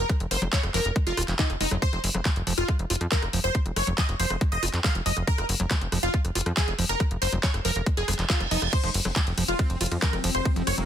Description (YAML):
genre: psychedelic trance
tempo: 139 BPM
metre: 4/4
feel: straight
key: F phrygian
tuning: A4 = 440 Hz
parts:
  - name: supersaw stab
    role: melody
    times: 0.0-10.8 s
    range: Eb4 to F5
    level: -30 LUFS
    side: equal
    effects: phaser, sidechain pumping, digital delay
  - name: plucky analog bass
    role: bass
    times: 0.0-10.8 s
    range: Eb1 to F2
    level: -28 LUFS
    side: equal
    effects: none
  - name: overdriven acid bass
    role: riff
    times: 0.1-10.8 s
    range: Eb3 to F4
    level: -35 LUFS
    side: moving between left 4 dB and right 5 dB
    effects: auto-pan, sidechain pumping, dub echo
  - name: drum and bass drum kit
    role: drums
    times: 0.1-10.9 s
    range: crash cymbal, handclaps, hi-hat, ride cymbal, rim click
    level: -29 LUFS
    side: left 1 dB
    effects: overdrive
  - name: electronic kick drum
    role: drums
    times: 0.1-10.5 s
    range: none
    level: -24 LUFS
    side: equal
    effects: overdrive
  - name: reverse cymbal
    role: sound effects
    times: 8.0-8.7 s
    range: none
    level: -32 LUFS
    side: right 7 dB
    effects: none
  - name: swarming drone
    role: sustained chords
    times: 9.3-10.9 s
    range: F3 to C4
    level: -35 LUFS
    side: left 3 dB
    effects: built-in reverb, sidechain pumping
  - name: metallic wobble bass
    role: second line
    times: 9.6-10.9 s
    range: Bb3 to C4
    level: -41 LUFS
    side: right 2 dB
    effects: analog chorus, sidechain pumping, high-pass filter, digital delay
room: digital ambience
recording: dense, heavily limited modern master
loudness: -23 LUFS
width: side -10 dB against mid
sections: 0.0-10.9 A section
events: reverse cymbal 8.0-8.7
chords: 0.0 F5